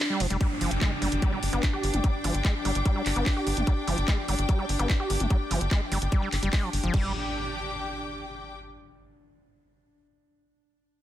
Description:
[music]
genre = psychedelic trance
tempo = 147 BPM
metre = 4/4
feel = straight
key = unclear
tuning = A4 = 440 Hz
[part]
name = evolving wavetable pad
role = sustained chords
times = 0.0-6.9 s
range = D4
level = -35 LUFS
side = left 2 dB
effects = chorus, built-in reverb, vintage 12-bit sampler grit, sidechain pumping
[part]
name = garage drum kit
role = drums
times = 0.0-7.0 s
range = crash cymbal, handclaps, hi-hat, ride cymbal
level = -33 LUFS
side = equal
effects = none
[part]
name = overdriven acid bass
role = riff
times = 0.1-7.1 s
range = F3 to G4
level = -32 LUFS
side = equal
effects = distortion, auto-pan, sidechain pumping, digital delay
[part]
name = tight sequencer bass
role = bass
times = 0.2-7.1 s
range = F1 to G1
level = -28 LUFS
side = equal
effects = none
[part]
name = electronic kick drum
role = drums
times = 0.4-7.0 s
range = none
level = -25 LUFS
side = equal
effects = none
[part]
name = downlifter and impact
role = sound effects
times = 0.4-3.7, 7.0-8.6 s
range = none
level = -38 LUFS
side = equal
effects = none
[part]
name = rich studio string section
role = texture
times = 0.4-8.5 s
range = D4 to D6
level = -34 LUFS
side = left 1 dB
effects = sidechain pumping
[sound]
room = light reverb, digital ambience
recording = none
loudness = -24 LUFS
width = side -12 dB against mid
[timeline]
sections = 0.4-6.9 A section; 6.9-8.6 B section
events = break 0.0-0.4; band accent 0.0; filter sweep on acid bass 0.4-6.9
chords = 0.4 G5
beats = 0.00 | 0.41 0.81 1.22 1.63 | 2.04 2.45 2.85 3.26 | 3.67 4.08 4.49 4.90 | 5.30 5.71 6.12 6.53 | 6.94 7.34 7.75 8.16

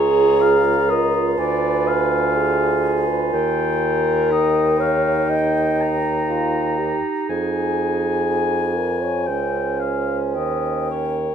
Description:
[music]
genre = classical, slow romantic movement for wind quintet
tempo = 61 BPM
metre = 4/4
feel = rubato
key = unclear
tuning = A4 = 440 Hz
[part]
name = mellow concert flute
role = melody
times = 0.0-11.3 s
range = G5 to Bb5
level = -26 LUFS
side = left 8 dB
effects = none
[part]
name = warm oboe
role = second line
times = 0.0-11.3 s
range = Db5 to Bb5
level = -26 LUFS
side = left 4 dB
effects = none
[part]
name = bright clarinet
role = accompaniment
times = 0.0-11.3 s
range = Db4 to F4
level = -26 LUFS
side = right 9 dB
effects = none
[part]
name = warm French horn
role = accompaniment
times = 0.0-11.3 s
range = F4 to Eb5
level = -21 LUFS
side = right 1 dB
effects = none
[part]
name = warm bassoon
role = bass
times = 0.0-11.3 s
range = Db2 to F2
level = -23 LUFS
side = right 2 dB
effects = none
[sound]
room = light reverb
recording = dark, warm production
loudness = -17 LUFS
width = side -8 dB against mid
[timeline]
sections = 0.0-11.3 A section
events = none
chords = 0.0 Bbm/Db; 1.4 Ddim7; 3.3 Eb; 7.3 Fm7; 9.3 Dbmaj7#11; 10.3 Eb7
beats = 0.40 1.36 2.35 | 3.32 4.30 5.29 6.29 | 7.28 8.26 9.26 10.34

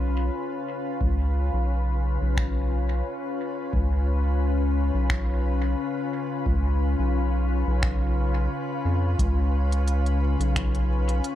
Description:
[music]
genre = ambient dub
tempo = 88 BPM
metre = 4/4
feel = swing 55% on 16ths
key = Db mixolydian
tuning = A4 = 440 Hz
[part]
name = soft additive organ-like pad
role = sustained chords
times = 0.0-11.4 s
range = Db3 to Cb5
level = -29 LUFS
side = left 3 dB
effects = ensemble chorus, built-in reverb
[part]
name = round analog bass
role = bass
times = 0.0-11.2 s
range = Cb2 to F2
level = -23 LUFS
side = equal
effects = none
[part]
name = electronic kick drum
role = drums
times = 1.0-10.7 s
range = none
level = -29 LUFS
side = equal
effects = none
[part]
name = organic electronic drum kit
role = drums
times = 2.4-11.4 s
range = finger snaps, hi-hat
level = -32 LUFS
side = right 1 dB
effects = dub echo
[sound]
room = little or no reverb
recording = echo-heavy mix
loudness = -22 LUFS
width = side -12 dB against mid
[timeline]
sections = 0.0-11.4 A section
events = none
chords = 0.0 Db7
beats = 0.33 | 1.01 1.69 2.37 3.06 | 3.74 4.42 5.10 5.78 | 6.46 7.15 7.83 8.51 | 9.19 9.87 10.55 11.24

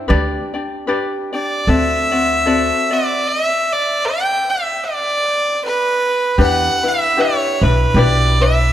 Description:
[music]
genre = Hawaiian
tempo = 76 BPM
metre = 4/4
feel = swing 57% on 8ths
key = unclear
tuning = A4 = 440 Hz
[part]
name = ukulele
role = accompaniment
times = 0.0-8.7 s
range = C4 to D5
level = -19 LUFS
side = left 3 dB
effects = none
[part]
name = upright bass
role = bass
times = 0.1-8.7 s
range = B1 to E2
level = -16 LUFS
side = right 1 dB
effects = none
[part]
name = rich fiddle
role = melody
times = 1.3-8.7 s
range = B4 to G5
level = -16 LUFS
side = right 1 dB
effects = analog delay
[sound]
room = moderate recital hall reverb, RT60 1.7 s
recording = faint mains hum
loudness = -14 LUFS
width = side -11 dB against mid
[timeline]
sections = 0.0-6.4 A section; 6.4-8.7 B section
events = none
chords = 0.1 G/D; 1.7 D7; 3.2 N.C.; 6.4 Em7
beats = | 0.10 0.88 1.67 2.46 | 3.24 4.03 4.82 5.60 | 6.39 7.17 7.96

